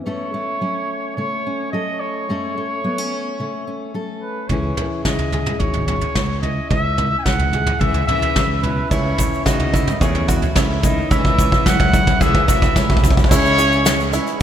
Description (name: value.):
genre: indie folk with a building arrangement.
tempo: 109 BPM.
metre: 4/4.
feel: straight.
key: unclear.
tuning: A4 = 440 Hz.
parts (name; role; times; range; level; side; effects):
fingerpicked steel-string acoustic guitar; accompaniment; 0.0-8.9 s; F#2 to A4; -26 LUFS; left 2 dB; none.
warm trumpet; melody; 0.1-14.1 s; B4 to G#5; -22 LUFS; right 1 dB; slapback echo.
fingered electric bass; bass; 4.5-14.2 s; G#1 to C#3; -22 LUFS; equal; none.
soft brush drum kit; drums; 4.5-14.4 s; crash cymbal, hi-hat, kick drum, snare drum, toms; -18 LUFS; equal; none.
bright cello; second line; 7.8-14.1 s; B2 to C#4; -25 LUFS; left 3 dB; slapback echo.
clear upright piano; accompaniment; 8.9-14.4 s; C#2 to E5; -28 LUFS; right 5 dB; none.
picked old ladder-braced acoustic guitar; accompaniment; 8.9-14.4 s; C#3 to E4; -29 LUFS; left 4 dB; none.
bluegrass banjo; arpeggios; 8.9-14.4 s; E4 to G#4; -26 LUFS; right 5 dB; slapback echo.
egg shaker; percussion; 8.9-14.3 s; none; -32 LUFS; left 8 dB; none.
mellow tonewheel organ; sustained chords; 13.3-14.4 s; G#4 to C#6; -32 LUFS; left 1 dB; none.
room: moderate lush hall reverb, RT60 1.7 s, small room ambience.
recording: big arena sound.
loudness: -16 LUFS.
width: side -10 dB against mid.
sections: 0.0-4.5 A section; 4.5-13.3 B section; 13.3-14.4 C section.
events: build-up 4.5-13.3; drum fill 4.5-13.3.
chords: 0.1 F#m; 4.5 C#m; 8.9 A/C#; 13.3 C#m.